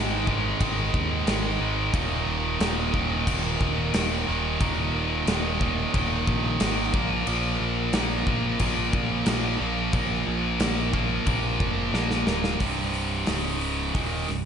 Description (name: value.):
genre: hard rock.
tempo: 90 BPM.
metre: 4/4.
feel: straight.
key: unclear.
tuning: A4 = 440 Hz.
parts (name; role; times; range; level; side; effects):
high-gain distorted guitar; riff; 0.0-14.5 s; C2 to Bb3; -29 LUFS; left 12 dB; distortion.
high-gain distorted guitar; riff; 0.0-14.5 s; C2 to Bb3; -28 LUFS; right 10 dB; distortion.
modern bright picked electric bass; bass; 0.0-14.5 s; C1 to Eb2; -30 LUFS; left 1 dB; none.
gated 80s drum kit; drums; 0.3-14.4 s; crash cymbal, hi-hat, kick drum, snare drum; -28 LUFS; equal; none.
room: light reverb, studio reverb.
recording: nothing above 10.5 kHz.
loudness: -23 LUFS.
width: side -7 dB against mid.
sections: 0.0-12.6 A section; 12.6-14.5 B section.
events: drum fill 12.0-12.6.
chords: 0.0 Ab5; 1.9 Eb5; 6.9 Bb5; 12.6 C5; 13.3 Db5.